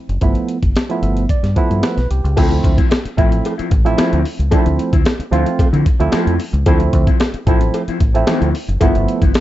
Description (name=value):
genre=funk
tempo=112 BPM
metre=4/4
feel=straight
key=D dorian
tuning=A4 = 439 Hz
part: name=deep dub fingered electric bass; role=bass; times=0.1-9.3 s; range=F#1 to D3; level=-17 LUFS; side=equal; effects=none
part: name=breakbeat sampler-style drum kit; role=drums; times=0.1-9.4 s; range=crash cymbal, hi-hat, kick drum, snare drum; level=-16 LUFS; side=equal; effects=vintage 12-bit sampler grit
part: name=barky tine electric piano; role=stabs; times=0.2-9.2 s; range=F3 to E5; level=-20 LUFS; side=right 4 dB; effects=overdrive, phaser, plate reverb
part: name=mellow electric guitar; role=accompaniment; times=2.4-9.4 s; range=F3 to E4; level=-23 LUFS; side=left 6 dB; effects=plate reverb
part: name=cowbell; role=percussion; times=2.4-9.4 s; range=none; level=-26 LUFS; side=left 4 dB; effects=none
room=light reverb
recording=dark, warm production, nothing above 7.9 kHz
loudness=-13 LUFS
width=side -14 dB against mid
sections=0.0-2.4 A section; 2.4-9.4 B section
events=tine electric piano fill 0.8-2.4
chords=0.2 G13; 2.4 Dm9; 8.8 G13